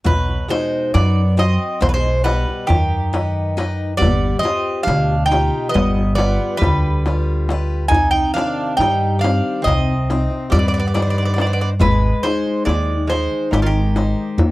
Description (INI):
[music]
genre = greek folk, Greek bouzouki band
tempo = 138 BPM (eighths)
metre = 9/8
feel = straight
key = unclear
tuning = A4 = 440 Hz
[part]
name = Greek bouzouki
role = second line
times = 0.0-14.5 s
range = D3 to Eb4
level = -27 LUFS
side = right 4 dB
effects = none
[part]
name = picked steel-string acoustic guitar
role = accompaniment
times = 0.0-14.5 s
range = B2 to F#5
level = -24 LUFS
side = left 4 dB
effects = none
[part]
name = Greek bouzouki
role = melody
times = 0.1-14.5 s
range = F4 to Ab5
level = -21 LUFS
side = right 1 dB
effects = none
[part]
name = upright bass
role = bass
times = 0.1-14.5 s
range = G1 to G2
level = -18 LUFS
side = equal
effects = none
[part]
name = darbuka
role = percussion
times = 0.1-14.5 s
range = none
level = -21 LUFS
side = left 1 dB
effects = none
[sound]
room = little or no reverb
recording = dry, close 1970s-style studio recording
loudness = -15 LUFS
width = side -18 dB against mid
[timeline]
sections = 0.1-14.5 A section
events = speeding up 0.0-14.5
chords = 0.1 B; 4.0 G7; 7.9 Cmadd9; 11.8 Ab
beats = | 0.07 0.51 0.95 1.39 1.82 2.26 2.70 3.14 3.58 | 4.01 4.45 4.89 5.32 5.76 6.19 6.63 7.06 7.50 | 7.93 8.36 8.79 9.22 9.66 10.09 10.52 10.95 11.38 | 11.81 12.24 12.67 13.10 13.52 13.95 14.38